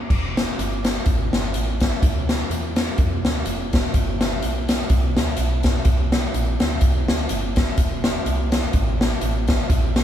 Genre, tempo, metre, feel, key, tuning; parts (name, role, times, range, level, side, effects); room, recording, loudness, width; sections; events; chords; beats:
uptempo gospel; 125 BPM; 4/4; swing 56% on 8ths; F major; A4 = 440 Hz
woody FM bass; bass; 0.1-10.0 s; F1 to F2; -24 LUFS; right 1 dB
swinging big-band drum kit; drums; 0.1-10.0 s; crash cymbal, hi-hat, kick drum, snare drum; -20 LUFS; equal
light reverb; band playing live in one room; -18 LUFS; side -10 dB against mid
0.1-10.0 A section
| 0.10 0.58 1.06 1.54 | 2.02 2.50 2.98 3.46 | 3.94 4.42 4.90 5.38 | 5.86 6.34 6.82 7.30 | 7.78 8.26 8.74 9.22 | 9.70